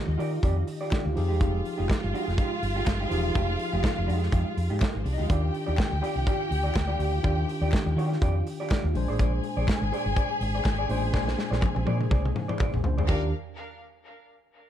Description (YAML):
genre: disco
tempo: 123 BPM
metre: 4/4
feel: swing 56% on 16ths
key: Eb major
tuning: A4 = 438 Hz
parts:
  - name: rich studio string section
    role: second line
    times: 0.0-13.3 s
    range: Ab3 to Ab5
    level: -34 LUFS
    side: left 2 dB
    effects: tape echo
  - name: tine electric piano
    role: accompaniment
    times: 0.0-13.3 s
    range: Bb2 to C5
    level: -34 LUFS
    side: left 1 dB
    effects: medium stereo tremolo
  - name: electric guitar through a small old amp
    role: accompaniment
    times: 0.1-13.2 s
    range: Ab3 to D5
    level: -34 LUFS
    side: right 2 dB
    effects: none
  - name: fingered electric bass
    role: bass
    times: 0.1-13.3 s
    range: Fb1 to Eb3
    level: -27 LUFS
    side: equal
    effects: none
  - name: modern studio drum kit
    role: drums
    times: 0.2-13.2 s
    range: crash cymbal, hi-hat, kick drum, snare drum, toms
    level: -28 LUFS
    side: equal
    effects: none
  - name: group handclap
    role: percussion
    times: 0.9-13.3 s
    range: none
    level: -44 LUFS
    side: left 6 dB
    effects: none
room: little or no reverb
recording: none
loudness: -24 LUFS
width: side -10 dB against mid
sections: 0.0-13.1 A section; 13.1-14.7 B section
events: drum fill 11.1-13.1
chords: 0.0 Ebmaj9; 1.2 Fm9; 5.3 Ebmaj9; 8.9 Bb9; 13.1 Ebmaj9